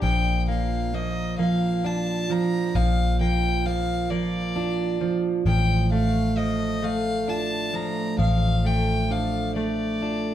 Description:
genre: six-eight pop ballad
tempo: 44 BPM (dotted quarters)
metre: 6/8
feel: straight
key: Bb major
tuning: A4 = 442 Hz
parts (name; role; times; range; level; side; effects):
- warm violin; melody; 0.0-10.3 s; D5 to Bb5; -29 LUFS; left 4 dB; none
- fingerpicked steel-string acoustic guitar; accompaniment; 0.0-10.3 s; A2 to G4; -26 LUFS; right 4 dB; none
- direct-recorded clean electric guitar; arpeggios; 0.0-10.3 s; F3 to G4; -31 LUFS; left 4 dB; none
- vintage muted fingered electric bass; bass; 0.0-10.3 s; A1 to Bb1; -24 LUFS; equal; none
room: wet stone room reverb, RT60 1.0 s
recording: band playing live in one room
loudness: -22 LUFS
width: side -11 dB against mid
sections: 0.0-10.3 A section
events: none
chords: 0.0 Bb; 5.5 Dm/A

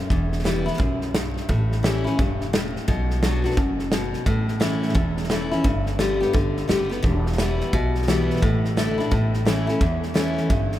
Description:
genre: honky-tonk and classic country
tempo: 173 BPM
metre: 4/4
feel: swing 62% on 8ths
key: unclear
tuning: A4 = 438 Hz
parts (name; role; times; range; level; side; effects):
- picked steel-string acoustic guitar; accompaniment; 0.0-10.8 s; E2 to G4; -23 LUFS; left 1 dB; none
- upright bass; bass; 0.1-10.8 s; E1 to E2; -26 LUFS; equal; none
- natural country drum kit; drums; 0.1-10.8 s; hi-hat, kick drum, snare drum; -25 LUFS; equal; none
room: moderate cathedral reverb, RT60 5.6 s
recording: in a vast, echoing space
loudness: -20 LUFS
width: side -13 dB against mid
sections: 0.0-10.8 A section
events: none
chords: 0.1 Em; 1.5 A7; 2.9 Bm; 4.3 A; 5.6 G; 7.0 Em; 8.4 Asus4; 9.1 A

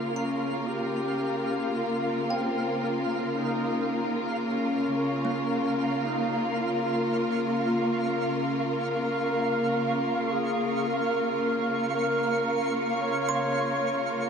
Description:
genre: ambient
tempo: 56 BPM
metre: 4/4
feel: straight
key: Bb dorian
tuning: A4 = 439 Hz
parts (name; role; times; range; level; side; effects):
- alto flute; melody; 0.0-14.3 s; C4 to Db5; -31 LUFS; equal; shimmer reverb, tape echo
- clear symphonic string section; sustained chords; 0.0-14.3 s; Db3 to Bb4; -28 LUFS; left 1 dB; shimmer reverb
- kalimba; arpeggios; 0.0-14.3 s; Bb3 to C6; -38 LUFS; right 2 dB; shimmer reverb, tape echo
- twinkling granular texture; texture; 0.0-14.3 s; F5 to F6; -32 LUFS; right 1 dB; built-in reverb, shimmer reverb
room: wet huge ambient reverb, RT60 7.9 s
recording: dark, warm production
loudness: -25 LUFS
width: side -6 dB against mid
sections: 0.0-14.3 A section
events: fade-in on kalimba 0.0-14.3; fade-in on alto flute 0.0-14.3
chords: 0.0 Bbm

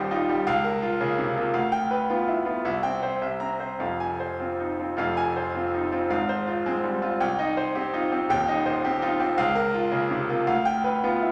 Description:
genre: classical, virtuoso piano study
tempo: 109 BPM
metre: 2/4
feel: rubato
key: F minor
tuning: A4 = 440 Hz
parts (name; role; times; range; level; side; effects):
- bright concert grand piano; solo; 0.0-11.3 s; Eb1 to Bb5; -26 LUFS; equal; none
room: wet recital hall reverb, RT60 1.5 s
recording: none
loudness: -26 LUFS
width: mono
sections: 0.0-5.0 A section; 5.0-11.3 B section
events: none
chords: 0.5 Bbm/Db; 1.5 G7/D; 2.6 C; 3.2 C7; 3.8 Fm; 6.1 Fm/Ab; 7.2 Cm; 8.3 Cm/Eb; 9.4 Bbm/Db; 10.5 G7/D

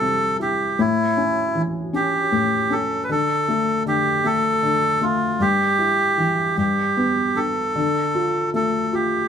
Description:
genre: children's music, lullaby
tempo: 52 BPM (dotted quarters)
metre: 6/8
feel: rubato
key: unclear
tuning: A4 = 445 Hz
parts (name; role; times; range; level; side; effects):
- melodica; melody; 0.0-9.3 s; E4 to B4; -20 LUFS; right 2 dB; none
- felt-muted upright piano; accompaniment; 0.0-9.3 s; G2 to F4; -23 LUFS; left 3 dB; none
room: moderate studio reverb, RT60 0.9 s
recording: band playing live in one room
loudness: -18 LUFS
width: side -8 dB against mid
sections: 0.0-9.3 A section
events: none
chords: 0.0 C; 0.8 A7; 3.1 D5; 5.4 Em/G; 6.6 G; 7.8 Dm

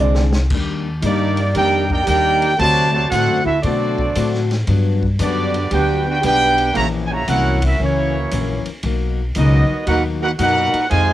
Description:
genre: jazz, big band swing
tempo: 115 BPM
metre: 4/4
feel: swing 67% on 8ths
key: unclear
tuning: A4 = 439 Hz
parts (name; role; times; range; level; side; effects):
- picked plugged-in steel-string acoustic guitar; accompaniment; 0.0-11.1 s; F2 to F#4; -24 LUFS; left 8 dB; cassette tape
- upright bass; bass; 0.0-11.1 s; Bb1 to Cb3; -19 LUFS; equal; none
- vintage drum kit; drums; 0.1-11.1 s; crash cymbal, hi-hat, kick drum, ride cymbal, snare drum; -28 LUFS; equal; cassette tape
- warm trombone section; second line; 1.0-11.1 s; A#2 to A#4; -22 LUFS; right 7 dB; cassette tape, plate reverb
- clear trumpet section; melody; 1.1-11.1 s; Bb3 to Bb5; -18 LUFS; equal; cassette tape, plate reverb
room: light reverb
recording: home recording on cassette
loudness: -15 LUFS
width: side -13 dB against mid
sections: 0.5-11.1 A section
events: drum fill 0.0-0.5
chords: 0.5 Ebmaj7; 2.6 D7; 4.7 Gmaj7; 6.8 Gb7; 8.8 Bmaj7

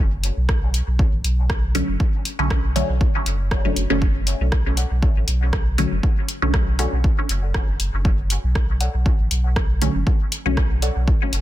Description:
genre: dub techno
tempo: 119 BPM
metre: 4/4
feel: swing 54% on 16ths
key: B minor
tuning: A4 = 440 Hz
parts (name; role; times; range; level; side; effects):
- warm sub bass; bass; 0.0-11.4 s; F#1 to B1; -21 LUFS; equal; sidechain pumping
- deep house drum kit; drums; 0.2-11.4 s; hi-hat, rim click; -28 LUFS; equal; soft clipping on snare, dub echo
- electronic kick drum; drums; 0.5-11.2 s; none; -20 LUFS; equal; none
- filtered dub chord stab; stabs; 1.7-10.6 s; D3 to C#4; -25 LUFS; equal; phaser, cassette tape, sidechain pumping, dub echo
- filtered dub chord stab; riff; 4.8-11.0 s; A4 to F#5; -34 LUFS; left 2 dB; phaser, sidechain pumping, dub echo
room: little or no reverb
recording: dense, heavily limited modern master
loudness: -18 LUFS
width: side -14 dB against mid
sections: 0.0-11.4 A section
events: none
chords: 0.0 Bm7

